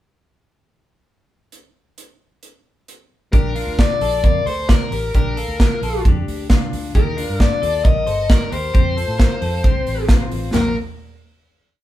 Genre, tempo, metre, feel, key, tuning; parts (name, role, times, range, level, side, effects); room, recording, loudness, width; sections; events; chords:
jangly indie pop; 133 BPM; 4/4; straight; Bb major; A4 = 440 Hz
modern studio drum kit; drums; 1.5-10.6 s; hi-hat, kick drum, ride cymbal, snare drum, toms; -17 LUFS; equal
smooth overdriven lead guitar; melody; 3.3-10.7 s; Bb4 to Eb5; -22 LUFS; left 3 dB
twelve-string electric guitar; arpeggios; 3.3-10.7 s; Bb3 to D5; -27 LUFS; left 2 dB
vintage muted fingered electric bass; bass; 3.3-10.7 s; G1 to A2; -25 LUFS; equal
light reverb; band playing live in one room; -15 LUFS; side -14 dB against mid
1.5-3.3 pickup bar; 3.3-10.5 verse; 10.5-11.8 final note
1.5 N.C.; 3.3 Bb; 6.9 Eb; 8.7 F; 10.5 N.C.